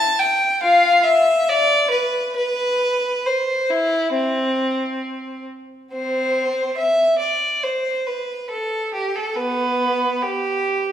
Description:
classical, baroque-style suite movement for unaccompanied violin; 69 BPM; 4/4; rubato; C major; A4 = 439 Hz
clear violin; solo; 0.0-10.9 s; B3 to A5; -17 LUFS; equal
wet recital hall reverb, RT60 1.7 s; heard from further back in the room; -17 LUFS; side -10 dB against mid
0.0-5.9 A section; 5.9-10.9 B section

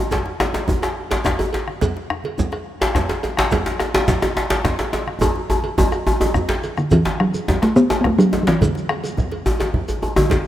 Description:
west african traditional, West African drum ensemble; 141 BPM (dotted quarters); 12/8; straight; D major pentatonic; A4 = 440 Hz
bombo; percussion; 0.1-10.4 s; -26 LUFS; left 1 dB
congas; percussion; 0.1-10.4 s; -28 LUFS; right 4 dB
cowbell; percussion; 0.1-10.4 s; -29 LUFS; right 4 dB
djembe; percussion; 0.1-10.4 s; -30 LUFS; left 2 dB
djembe; percussion; 0.1-10.4 s; -20 LUFS; left 1 dB
shekere; percussion; 0.1-10.4 s; -31 LUFS; left 1 dB
talking drum; melody; 6.8-10.5 s; D3 to B3; -17 LUFS; equal
moderate lush hall reverb, RT60 3.0 s; rough home demo mix; -17 LUFS; side -12 dB against mid
0.0-6.9 A section; 6.9-10.5 B section
drum fill 5.2-6.9

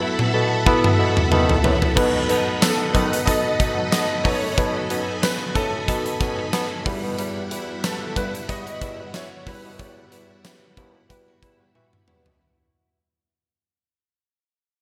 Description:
1980s-style pop; 92 BPM; 4/4; swing 55% on 16ths; B mixolydian; A4 = 439 Hz
clear grand piano; melody; 0.0-12.0 s; A4 to D#5; -31 LUFS; equal; ensemble chorus
FM electric piano; accompaniment; 0.0-12.4 s; B3 to B5; -28 LUFS; equal
string machine, full ensemble; sustained chords; 0.0-12.4 s; G3 to B5; -31 LUFS; equal; ensemble chorus
direct-recorded clean electric guitar; riff; 0.0-13.0 s; F#3 to A4; -33 LUFS; equal; ensemble chorus
huge arena drum kit; drums; 0.2-12.4 s; crash cymbal, hi-hat, kick drum, snare drum, tambourine, toms; -25 LUFS; equal; gated reverb
warm bassoon; bass; 0.3-12.4 s; D#2 to B3; -30 LUFS; equal
funky polysynth comp; stabs; 2.9-12.4 s; F#3 to B4; -35 LUFS; equal
moderate lush hall reverb, RT60 2.1 s; bright 1980s-style digital production; -21 LUFS; mono
0.0-2.0 A section; 2.0-12.4 B section
drum fill 0.0-2.0, 11.8-12.4; fade-out 2.0-12.4; FM electric piano fill 11.1-12.4
0.0 B7sus4; 2.0 B7; 6.9 Emadd9

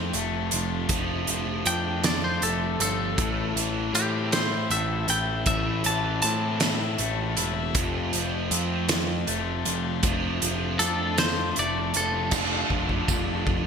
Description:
indie rock; 52 BPM (dotted quarters); 6/8; straight; A4 = 440 Hz
raw garage guitar; riff; 0.0-13.7 s; F2 to A4; -30 LUFS; left 11 dB; overdrive
sludgy distorted guitar; riff; 0.0-13.7 s; A2 to F4; -31 LUFS; right 8 dB; overdrive, ensemble chorus
growling picked electric bass; bass; 0.0-13.7 s; E1 to A2; -30 LUFS; equal; overdrive
loose indie drum kit; drums; 0.1-13.6 s; crash cymbal, hi-hat, kick drum, snare drum; -27 LUFS; right 1 dB; gated reverb
clean electric guitar; melody; 1.7-12.3 s; G4 to A5; -28 LUFS; equal; ping-pong delay
tambourine; percussion; 12.3-13.3 s; -36 LUFS; right 13 dB
light reverb, small room reverb; bright 1980s-style digital production; -23 LUFS; side -6 dB against mid
0.0-12.3 A section; 12.3-13.7 B section
clean electric guitar solo 0.0-12.3; drum fill 12.3-13.7
0.0 F; 0.9 Dm/F; 3.2 Am; 7.8 F; 10.0 Dm/F

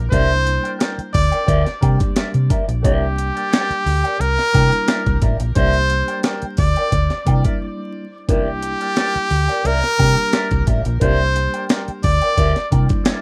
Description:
funk; 88 BPM; 4/4; straight; A4 = 440 Hz
hollow-body short-scale fingered electric bass; bass; 0.0-12.9 s; A1 to C3; -21 LUFS; equal
bright trumpet; melody; 0.1-12.7 s; G4 to D5; -23 LUFS; equal; tape echo
mellow electric guitar; accompaniment; 0.1-13.2 s; Bb4 to G5; -27 LUFS; equal; wah, harmonic tremolo
mellow tine electric piano; stabs; 0.1-13.2 s; G3 to G4; -32 LUFS; equal; tape echo
breakbeat sampler-style drum kit; drums; 0.1-13.2 s; hi-hat, kick drum, snare drum; -22 LUFS; equal
little or no reverb; rough home demo mix, vinyl crackle; -18 LUFS; mono
0.0-13.2 A section
break 7.6-8.3
0.0 C9

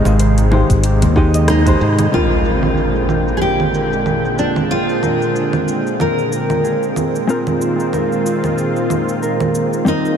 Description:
sunset chillout; 93 BPM; 4/4; swing 56% on 16ths; A4 = 440 Hz
hollow-body jazz guitar; accompaniment; 0.0-10.2 s; G3 to G5; -21 LUFS; moving between left 4 dB and right 3 dB; auto-pan, low-pass filter, tape echo
lush unison pad; sustained chords; 0.0-10.2 s; Bb2 to G5; -20 LUFS; right 1 dB; chorus
concert harp; arpeggios; 0.0-10.2 s; F4 to Eb5; -24 LUFS; right 1 dB; low-pass filter, tape echo
modern bright fingered electric bass; bass; 0.1-2.1 s; Ab1 to Ab2; -13 LUFS; equal; tube saturation
deep house drum kit; drums; 0.1-10.2 s; cabasa, congas, hi-hat, rim click; -23 LUFS; right 3 dB; overdrive, low-pass filter on hats, studio ambience, low-pass filter on perc, low-pass filter on snare
electronic kick drum; drums; 0.7-1.8 s; -16 LUFS; equal; studio ambience
nylon-string guitar; melody; 1.5-10.2 s; D4 to Bb4; -21 LUFS; left 1 dB; wide subtle chorus, tape echo
impact; sound effects; 2.1-4.7 s; -22 LUFS; left 1 dB
moderate huge ambient reverb, RT60 9.3 s; dreamy mix soaked in reverb; -13 LUFS; side -8 dB against mid
0.0-2.1 A section; 2.1-10.2 B section
band accent 1.5-1.8; impact 2.1-4.7; filter sweep on drum 2.1-10.2
0.0 Abmaj7; 2.1 Bb13; 7.3 Ab69

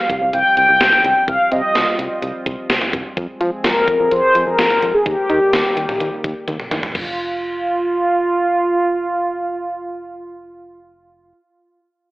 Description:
synth-pop; 127 BPM; 4/4; straight; A4 = 440 Hz
mellow synth brass; melody; 0.0-11.3 s; F4 to G5; -16 LUFS; equal; chorus, analog delay
warm analog pad; sustained chords; 0.0-6.9 s; Eb3 to Ab4; -28 LUFS; equal; chorus
solid FM bass; bass; 0.1-11.3 s; F1 to F3; -24 LUFS; equal
gated 80s digital drum machine; drums; 0.1-7.1 s; crash cymbal, hi-hat, kick drum, snare drum, toms; -21 LUFS; equal; gated reverb, gated reverb snare, overdrive
moderate plate reverb, RT60 1.2 s; telephone sound; -15 LUFS; side -19 dB against mid
0.0-6.9 A section; 6.9-10.7 B section
drum fill 6.5-6.9
0.0 Csus4; 3.2 Fm; 5.1 Eb; 6.9 N.C.

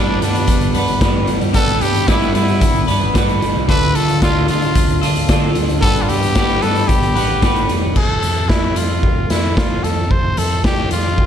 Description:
indie rock; 112 BPM; 4/4; straight; G mixolydian; A4 = 439 Hz
growling trumpet; melody; 0.0-11.3 s; D4 to C5; -21 LUFS; left 1 dB; slapback echo
twelve-string electric guitar; riff; 0.0-8.0 s; D3 to B4; -19 LUFS; equal; double-tracked left and right
overdriven fingered electric bass; bass; 0.0-11.3 s; F1 to D3; -21 LUFS; equal
raw garage drum kit; drums; 0.2-11.3 s; crash cymbal, hi-hat, kick drum, snare drum; -17 LUFS; equal
light reverb, small room ambience; -13 LUFS; side -9 dB against mid
0.0-8.0 A section; 8.0-11.3 B section
0.0 G; 3.7 Dm; 5.8 G; 8.0 F

